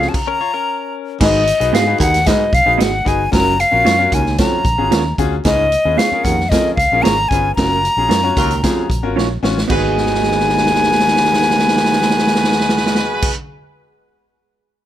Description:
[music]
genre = uptempo 1960s-style soul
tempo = 113 BPM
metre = 4/4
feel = straight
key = G# dorian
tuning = A4 = 440 Hz
[part]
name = breathy silver concert flute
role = melody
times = 0.0-13.3 s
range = D#5 to A#5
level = -16 LUFS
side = left 2 dB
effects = plate reverb
[part]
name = bright upright piano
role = accompaniment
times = 0.0-13.3 s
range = C#4 to C#5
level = -23 LUFS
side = left 5 dB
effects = none
[part]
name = breathy baritone saxophone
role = riff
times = 0.0-13.3 s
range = D#2 to G#2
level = -21 LUFS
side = right 4 dB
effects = none
[part]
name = vintage muted fingered electric bass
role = bass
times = 0.0-13.3 s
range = F#1 to G#2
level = -22 LUFS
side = equal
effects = none
[part]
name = vintage drum kit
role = drums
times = 0.0-13.4 s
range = crash cymbal, hi-hat, kick drum, snare drum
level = -18 LUFS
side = right 1 dB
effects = none
[part]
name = direct-recorded clean electric guitar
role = riff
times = 0.3-1.2 s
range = C#4 to C#5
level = -24 LUFS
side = left 12 dB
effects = none
[part]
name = electric guitar through a small old amp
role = stabs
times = 1.7-13.3 s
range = B3 to D#5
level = -22 LUFS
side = right 9 dB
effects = plate reverb
[part]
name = clear horn section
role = second line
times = 8.4-13.3 s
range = F#3 to B4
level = -23 LUFS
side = right 2 dB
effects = none
[sound]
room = light reverb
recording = none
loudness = -12 LUFS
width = side -11 dB against mid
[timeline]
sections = 0.0-1.2 A section; 1.2-9.7 B section; 9.7-13.9 C section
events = stop 0.1-1.2; band accent 7.6-9.7; drum fill 9.2-9.7, 10.0-13.2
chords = 0.0 F#maj7 (rootless); 1.2 G#m7; 3.3 F#maj7; 5.5 C#7; 7.6 F#maj7; 9.7 G#m7

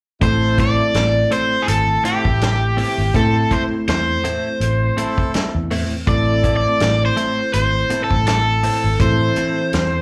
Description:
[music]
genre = straight-eighth soul blues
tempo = 82 BPM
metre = 4/4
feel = swing 56% on 16ths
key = A minor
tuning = A4 = 440 Hz
[part]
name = cranked stack guitar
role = melody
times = 0.2-10.0 s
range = G4 to D5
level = -21 LUFS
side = equal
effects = overdrive, slapback echo
[part]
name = barky tine electric piano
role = accompaniment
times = 0.2-10.0 s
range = E3 to A4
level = -26 LUFS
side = equal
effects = slapback echo
[part]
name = bright horn section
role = sustained chords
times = 0.2-9.7 s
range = C4 to C5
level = -33 LUFS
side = equal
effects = none
[part]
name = vintage muted fingered electric bass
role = bass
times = 0.2-10.0 s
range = G#1 to A2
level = -21 LUFS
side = equal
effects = none
[part]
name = warm soul drum kit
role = drums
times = 0.2-9.9 s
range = hi-hat, kick drum, snare drum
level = -24 LUFS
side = equal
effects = none
[part]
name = direct-recorded clean electric guitar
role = stabs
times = 0.6-9.6 s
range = A2 to E4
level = -30 LUFS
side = equal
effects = analog chorus, slapback echo, analog delay
[sound]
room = light reverb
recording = live gig heard through the venue's PA, club reverb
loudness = -18 LUFS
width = mono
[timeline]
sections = 0.2-10.0 A section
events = none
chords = 0.2 Am

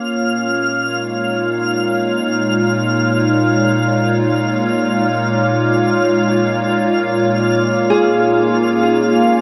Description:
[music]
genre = ambient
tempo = free time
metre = none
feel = none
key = unclear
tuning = A4 = 440 Hz
[part]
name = evolving wavetable pad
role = sustained chords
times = 0.0-9.4 s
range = Bb2 to F5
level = -17 LUFS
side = equal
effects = chorus, built-in reverb
[part]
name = overtone-sweeping drone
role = drone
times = 0.0-9.4 s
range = Bb3 to F4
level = -26 LUFS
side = equal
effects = chorus, built-in reverb, phaser
[part]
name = twinkling granular texture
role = texture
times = 0.0-9.4 s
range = F6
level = -25 LUFS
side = equal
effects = built-in reverb
[part]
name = Celtic harp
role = arpeggios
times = 7.9-9.4 s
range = Ab4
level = -20 LUFS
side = equal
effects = delay
[sound]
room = wet huge ambient reverb, RT60 7.9 s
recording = dark, warm production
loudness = -16 LUFS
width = mono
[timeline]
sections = 0.0-9.4 A section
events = fade-in on synth drone 0.0-9.4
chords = 0.1 Dbadd9/Bb

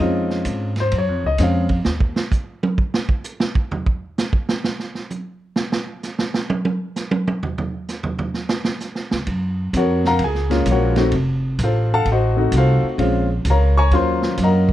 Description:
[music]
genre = jazz piano trio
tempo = 129 BPM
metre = 4/4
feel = swing 67% on 8ths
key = Bb minor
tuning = A4 = 442 Hz
[part]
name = warm baby grand piano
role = melody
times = 0.0-1.8, 9.8-14.7 s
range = Gb3 to Db6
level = -19 LUFS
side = left 2 dB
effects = plate reverb
[part]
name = upright bass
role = bass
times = 0.0-2.2, 9.1-14.7 s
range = F1 to Ab2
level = -18 LUFS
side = equal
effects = none
[part]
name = vintage drum kit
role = drums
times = 0.3-14.7 s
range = hi-hat, kick drum, ride cymbal, snare drum, toms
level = -22 LUFS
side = right 2 dB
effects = none
[sound]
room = light reverb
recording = dark, warm production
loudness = -18 LUFS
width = side -13 dB against mid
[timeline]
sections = 0.0-14.7 A section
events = grand piano solo 0.0-14.7; drum solo 1.9-9.3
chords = 0.0 Bbm7 (rootless); 1.9 N.C.; 9.3 Gbmaj7; 11.1 F7b9; 13.0 Bbm7; 13.9 Ebm7

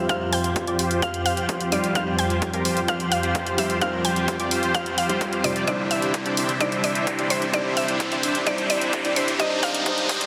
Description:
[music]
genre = EDM, festival progressive house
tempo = 129 BPM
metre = 4/4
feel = straight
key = unclear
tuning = A4 = 439 Hz
[part]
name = felt-muted upright piano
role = accompaniment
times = 0.0-10.3 s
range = C3 to C5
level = -31 LUFS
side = equal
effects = sidechain pumping, digital delay
[part]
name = lush unison pad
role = sustained chords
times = 0.0-10.3 s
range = F2 to Eb6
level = -32 LUFS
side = equal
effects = chorus, sidechain pumping
[part]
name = dense compressed supersaw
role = riff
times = 0.0-10.3 s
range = D4 to F5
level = -29 LUFS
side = equal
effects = cassette tape, sidechain pumping, low-pass filter, digital delay
[part]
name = riser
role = sound effects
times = 3.0-10.3 s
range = none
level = -34 LUFS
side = equal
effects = none
[part]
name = mallet-like synth pluck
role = melody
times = 0.1-10.3 s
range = C5 to G5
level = -30 LUFS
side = equal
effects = chorus, digital delay
[part]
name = electronic hi-hat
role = drums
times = 0.1-10.3 s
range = none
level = -31 LUFS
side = equal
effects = none
[part]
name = electronic kick drum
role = drums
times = 0.1-10.2 s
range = none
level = -33 LUFS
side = equal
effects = none
[sound]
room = wet lush hall reverb, RT60 2.0 s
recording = dense, heavily limited modern master, high-pass filter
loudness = -23 LUFS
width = mono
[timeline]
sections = 0.0-10.3 A section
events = build-up 0.0-10.3; filter sweep on supersaw synth 0.0-10.3; filter sweep 0.0-10.3; riser 3.0-10.3; drum fill 5.7-10.3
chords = 0.0 Fsus2; 5.7 Cadd9; 9.4 Ab

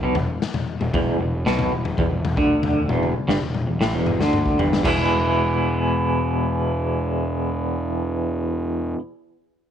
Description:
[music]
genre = psychedelic rock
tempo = 115 BPM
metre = 4/4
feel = straight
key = E mixolydian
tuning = A4 = 444 Hz
[part]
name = twangy electric guitar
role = riff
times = 0.0-9.0 s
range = E2 to E4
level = -22 LUFS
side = right 1 dB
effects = tremolo
[part]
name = fuzz picked electric bass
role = bass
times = 0.0-8.9 s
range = E1 to D2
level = -25 LUFS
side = right 1 dB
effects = overdrive
[part]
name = raw garage drum kit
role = drums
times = 0.1-5.0 s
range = crash cymbal, kick drum, snare drum, toms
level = -24 LUFS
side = left 3 dB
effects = none
[sound]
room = moderate plate reverb, RT60 1.3 s, studio ambience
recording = 1960s-style stereo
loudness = -19 LUFS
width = side -9 dB against mid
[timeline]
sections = 0.0-5.1 A section; 5.1-9.3 B section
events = drum fill 3.0-5.1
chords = 0.0 E5; 4.8 E

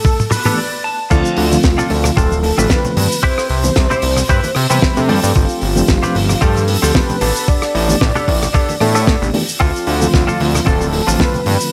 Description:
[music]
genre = nu-disco, nu disco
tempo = 113 BPM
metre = 4/4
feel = swing 54% on 16ths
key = D dorian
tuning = A4 = 440 Hz
[part]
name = unison lead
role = melody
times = 0.0-11.7 s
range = F4 to D5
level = -24 LUFS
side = equal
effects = tape echo
[part]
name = direct-recorded clean electric guitar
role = riff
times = 0.0-11.4 s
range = B3 to A5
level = -23 LUFS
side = equal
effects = analog chorus
[part]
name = electronic kick drum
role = drums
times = 0.0-11.3 s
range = none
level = -17 LUFS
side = equal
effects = none
[part]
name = damped 70s drum kit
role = drums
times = 0.1-11.7 s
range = crash cymbal, hi-hat, rim click, shaker, snare drum, toms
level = -22 LUFS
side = equal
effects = none
[part]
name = reed electric piano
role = accompaniment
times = 0.5-11.7 s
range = D3 to A4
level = -22 LUFS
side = equal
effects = fast tremolo
[part]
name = fat analog bass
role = bass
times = 1.1-11.6 s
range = D1 to C3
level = -19 LUFS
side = equal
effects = none
[part]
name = congas and bongos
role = percussion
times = 1.5-11.6 s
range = none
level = -28 LUFS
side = equal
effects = none
[sound]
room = light reverb, small room ambience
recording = none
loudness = -15 LUFS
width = mono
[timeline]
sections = 0.0-1.1 A section; 1.1-11.7 B section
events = build-up 0.0-1.1; drum fill 0.0-0.6; filter sweep on clean electric guitar 0.0-1.1; filter sweep on reed electric piano 0.0-1.1; clean electric guitar fill 0.3-1.1; stop 0.6-1.1; drop 1.1-11.7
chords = 0.0 A9sus4; 1.1 Dm7; 3.2 Cmaj7; 5.1 G9sus4; 7.2 A9sus4; 9.6 Dm7

